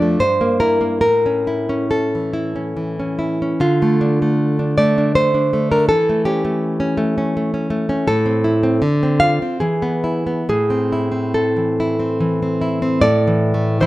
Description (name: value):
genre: romantic piece for solo classical guitar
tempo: 68-85 BPM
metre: 3/4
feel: rubato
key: A minor from 8.1 s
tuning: A4 = 440 Hz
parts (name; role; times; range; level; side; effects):
- nylon-string guitar; solo; 0.0-13.9 s; F2 to F5; -15 LUFS; equal; none
room: light reverb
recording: none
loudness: -15 LUFS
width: side -17 dB against mid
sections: 0.0-13.1 A section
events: none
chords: 0.2 Edim/G; 1.0 A; 3.6 Dm; 5.9 A7/E; 8.1 Am; 8.8 Dm7; 9.6 E; 10.5 Am; 13.1 A5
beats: 0.22 | 1.05 1.90 2.75 | 3.59 4.38 5.15 | 5.90 6.64 7.37 | 8.07 8.81 9.60 | 10.46 11.33 12.20 | 13.05 13.82